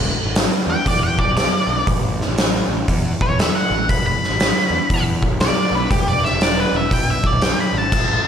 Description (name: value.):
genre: blues rock power trio and southern rock.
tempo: 119 BPM.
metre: 4/4.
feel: swing 65% on 8ths.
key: unclear.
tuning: A4 = 440 Hz.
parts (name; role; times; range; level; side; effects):
fuzz picked electric bass; bass; 0.0-8.2 s; E1 to E2; -23 LUFS; equal; overdrive.
oversized low-tuned drum kit; drums; 0.4-8.1 s; crash cymbal, hi-hat, kick drum, snare drum; -18 LUFS; equal; none.
octave-fuzz lead guitar; melody; 0.7-8.3 s; G4 to B5; -20 LUFS; equal; distortion, slapback echo.
room: light reverb, small room reverb.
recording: none.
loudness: -16 LUFS.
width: side -8 dB against mid.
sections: 0.0-8.3 A section.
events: lead electric guitar solo 0.0-8.3.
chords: 0.0 E7; 1.9 A5; 3.9 E5.